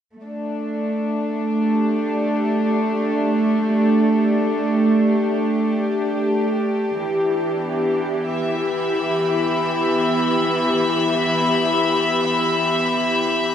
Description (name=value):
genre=ambient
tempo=free time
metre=none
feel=none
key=G major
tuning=A4 = 440 Hz
part: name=warm studio string section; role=sustained chords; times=0.1-13.5 s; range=E3 to B5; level=-18 LUFS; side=equal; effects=none
room=wet concert hall reverb, RT60 2.4 s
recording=none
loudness=-17 LUFS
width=side -9 dB against mid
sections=0.2-13.5 A section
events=filter sweep on string section 0.2-13.5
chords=0.2 Gsus2; 7.0 Em